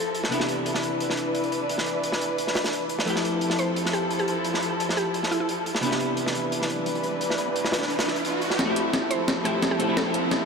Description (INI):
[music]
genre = liquid drum and bass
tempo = 174 BPM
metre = 4/4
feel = straight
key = C major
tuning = A4 = 440 Hz
[part]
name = mallet-like synth pluck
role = melody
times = 0.0-0.3, 3.6-5.5, 9.1-10.3 s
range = E4 to C5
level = -32 LUFS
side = equal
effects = chorus, analog delay
[part]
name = vintage hollow-body jazz guitar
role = accompaniment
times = 0.0-10.5 s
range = F2 to A4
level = -28 LUFS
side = left 1 dB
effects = analog chorus, analog delay
[part]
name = muted symphonic string section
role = sustained chords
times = 0.0-10.5 s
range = E3 to B4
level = -28 LUFS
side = equal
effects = low-pass filter
[part]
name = crunchy breakbeat drum kit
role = drums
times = 0.1-8.6 s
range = hi-hat, snare drum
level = -29 LUFS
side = equal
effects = high-pass filter on hats, high-pass filter on snare, high-pass filter on room
[part]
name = riser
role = sound effects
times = 6.7-10.5 s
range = none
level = -31 LUFS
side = right 1 dB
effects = none
[part]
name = breakbeat sampler-style drum kit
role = drums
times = 8.6-10.4 s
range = hi-hat, snare drum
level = -27 LUFS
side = equal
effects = none
[part]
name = electronic kick drum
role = drums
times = 8.6-10.4 s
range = none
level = -39 LUFS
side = equal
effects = none
[sound]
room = wet huge ambient reverb, RT60 7.9 s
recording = dreamy mix soaked in reverb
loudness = -23 LUFS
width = side -5 dB against mid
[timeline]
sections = 0.0-8.6 A section; 8.6-10.5 B section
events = riser 6.7-8.6, 8.6-10.5; build-up 8.6-10.5; drum fill 8.6-10.5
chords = 0.3 Cmaj9; 3.1 Fmaj7; 5.8 Cmaj9; 8.6 Fmaj7